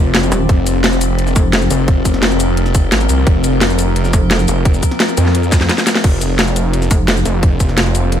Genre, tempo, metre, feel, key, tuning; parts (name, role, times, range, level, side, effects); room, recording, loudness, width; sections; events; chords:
dark technical drum and bass; 173 BPM; 4/4; straight; A4 = 440 Hz
metallic inharmonic drone; sustained chords; 0.0-8.2 s; F3 to Bb4; -19 LUFS; left 3 dB; chorus, built-in reverb, sidechain pumping
snarling distorted saw bass; bass; 0.0-8.2 s; F1 to F2; -16 LUFS; equal; overdrive, sidechain pumping
drum and bass drum kit; drums; 0.1-8.2 s; crash cymbal, hi-hat, shaker, snare drum; -17 LUFS; equal; overdrive, studio reverb
metallic wobble bass; bass; 0.3-1.7, 4.1-4.5, 6.9-7.2 s; Eb1 to F1; -15 LUFS; equal; chorus
electronic kick drum; drums; 0.5-7.7 s; -13 LUFS; equal; overdrive, studio reverb
digital ambience; -11 LUFS; side -9 dB against mid
0.0-8.2 A section
drum fill 5.5-6.0
0.0 F5